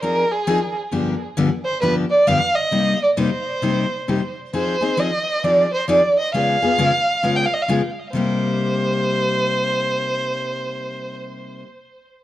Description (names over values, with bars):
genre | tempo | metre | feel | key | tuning
jazz | 133 BPM | 4/4 | swing 64% on 8ths | C minor | A4 = 440 Hz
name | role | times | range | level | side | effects
warm violin | melody | 0.0-11.2 s | Ab4 to G5 | -19 LUFS | right 1 dB | tape echo
picked steel-string acoustic guitar | accompaniment | 0.0-11.7 s | G2 to Ab4 | -21 LUFS | left 3 dB | none
room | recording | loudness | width
moderate studio reverb, RT60 0.8 s | worn, warbling old tape, cassette tape, warbly pitch drift | -17 LUFS | side -13 dB against mid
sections
0.0-4.5 A section; 4.5-8.1 B section; 8.1-11.8 C section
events
none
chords
0.0 Fm7; 0.9 G7; 2.7 Cm7; 4.5 Fm7; 6.3 Db7; 8.1 Cm7